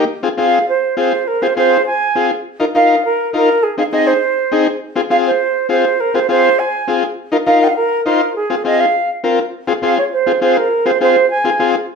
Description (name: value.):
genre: latin.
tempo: 203 BPM.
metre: 4/4.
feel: straight.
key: F minor.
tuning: A4 = 440 Hz.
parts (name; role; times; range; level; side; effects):
combo organ; accompaniment; 0.0-11.8 s; C4 to C5; -16 LUFS; left 5 dB; none.
breathy silver concert flute; melody; 0.4-11.7 s; Ab4 to Ab5; -14 LUFS; right 4 dB; plate reverb.
room: wet studio reverb, RT60 0.7 s.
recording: heard from further back in the room.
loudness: -12 LUFS.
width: side -5 dB against mid.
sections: 0.1-9.5 A section; 9.5-12.0 B section.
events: none.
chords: 0.1 Fm; 2.5 Ebsus2; 3.6 Ab; 4.8 Fm; 7.2 Ebsus2; 8.4 Fm.